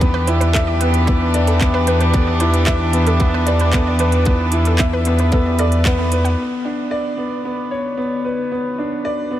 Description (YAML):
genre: piano and strings electronica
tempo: 113 BPM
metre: 4/4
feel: straight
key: B minor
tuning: A4 = 443 Hz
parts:
  - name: rich chamber string section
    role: sustained chords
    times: 0.0-9.4 s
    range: D3 to B4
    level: -23 LUFS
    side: equal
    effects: sidechain pumping, shimmer reverb
  - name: analog pluck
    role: arpeggios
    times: 0.0-6.3 s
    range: B3 to F#5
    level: -27 LUFS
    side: right 3 dB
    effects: chorus, sidechain pumping, digital delay, shimmer reverb
  - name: clear grand piano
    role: riff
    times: 0.0-9.4 s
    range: B3 to E5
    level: -20 LUFS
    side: equal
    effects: digital delay, shimmer reverb
  - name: round analog bass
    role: bass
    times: 0.0-6.4 s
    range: E2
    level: -18 LUFS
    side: equal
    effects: sidechain pumping
  - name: electronic kick drum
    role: drums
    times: 0.0-6.0 s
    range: none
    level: -17 LUFS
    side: equal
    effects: overdrive
  - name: organic electronic drum kit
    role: drums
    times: 0.0-6.4 s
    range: handclaps, hi-hat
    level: -26 LUFS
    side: right 1 dB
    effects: overdrive, low-pass filter on hats, low-pass filter on snare, low-pass filter on room
room: light reverb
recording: none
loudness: -15 LUFS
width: side -12 dB against mid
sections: 0.0-6.4 A section; 6.4-9.4 B section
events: band accent 5.9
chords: 0.0 Em7; 6.4 Bmadd9